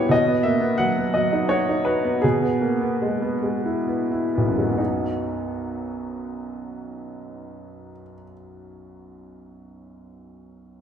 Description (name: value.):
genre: classical, romantic character piece for solo piano.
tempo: 60-90 BPM.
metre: 3/4.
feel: rubato.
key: B major.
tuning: A4 = 440 Hz.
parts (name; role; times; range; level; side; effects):
clear upright piano; solo; 0.0-10.8 s; B1 to F#5; -21 LUFS; equal; none.
room: wet recital hall reverb, RT60 1.6 s.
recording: heard from further back in the room.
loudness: -20 LUFS.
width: side -8 dB against mid.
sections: 0.0-4.8 A section; 4.8-9.4 B section.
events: slowing down 0.0-4.8.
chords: 0.1 B; 2.2 E/B; 4.8 B.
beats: | 0.10 0.79 1.50 | 2.23 3.00 3.87 | 4.79 5.56 6.31 | 7.06 7.85 8.62.